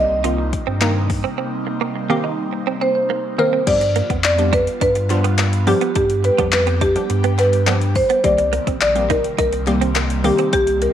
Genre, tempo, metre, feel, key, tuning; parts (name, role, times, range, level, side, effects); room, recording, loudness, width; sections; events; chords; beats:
dance-pop; 105 BPM; 4/4; straight; C minor; A4 = 440 Hz
marimba with soft mallets; melody; 0.0-10.9 s; G4 to Eb5; -18 LUFS; equal; slapback echo
glassy wavetable pluck; accompaniment; 0.0-10.8 s; Eb3 to Bb4; -23 LUFS; equal; chorus, sidechain pumping
airy breathy pad; sustained chords; 0.0-10.9 s; C3 to G4; -27 LUFS; right 1 dB; chorus, phaser, sidechain pumping
direct-recorded clean electric guitar; riff; 0.0-10.8 s; Bb3 to Eb4; -25 LUFS; right 13 dB; ensemble chorus
warm sub bass; bass; 0.0-10.9 s; Bb1 to G2; -21 LUFS; equal; sidechain pumping
deep house drum kit; drums; 0.2-10.9 s; crash cymbal, handclaps, hi-hat, kick drum; -23 LUFS; left 3 dB
group handclap; percussion; 4.2-10.1 s; -33 LUFS; left 11 dB
light reverb; 1960s-style stereo with parts hard left and right; -15 LUFS; side -10 dB against mid
0.0-3.7 A section; 3.7-10.9 B section
0.0 Cm7; 3.7 G7; 8.2 Cm7
0.24 0.81 | 1.39 1.96 2.53 3.10 | 3.67 4.24 4.81 5.39 | 5.96 6.53 7.10 7.67 | 8.24 8.81 9.39 9.96 | 10.53